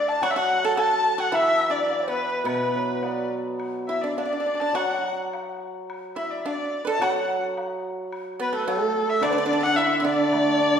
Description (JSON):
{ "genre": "chinese traditional, Chinese chamber ensemble", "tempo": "107 BPM", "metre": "4/4", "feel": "rubato", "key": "D gong mode", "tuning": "A4 = 440 Hz", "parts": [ { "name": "rich erhu", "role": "melody", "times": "0.0-10.8 s", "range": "A4 to A5", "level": "-25 LUFS", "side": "left 1 dB", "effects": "none" }, { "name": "pipa", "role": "second line", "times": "0.0-10.8 s", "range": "A3 to B4", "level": "-30 LUFS", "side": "right 4 dB", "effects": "none" }, { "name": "reedy large dizi", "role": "second line", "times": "0.0-10.8 s", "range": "A4 to A5", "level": "-27 LUFS", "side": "equal", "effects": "none" }, { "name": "hammered dulcimer", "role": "accompaniment", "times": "0.2-10.8 s", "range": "B2 to D4", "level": "-28 LUFS", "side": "right 1 dB", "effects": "none" }, { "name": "woodblock", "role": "percussion", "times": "0.2-10.5 s", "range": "none", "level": "-38 LUFS", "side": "left 3 dB", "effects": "none" } ], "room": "wet scoring stage reverb, RT60 1.7 s", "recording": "heard from further back in the room", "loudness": "-22 LUFS", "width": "side -8 dB against mid", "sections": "0.0-10.8 A section", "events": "none", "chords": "none" }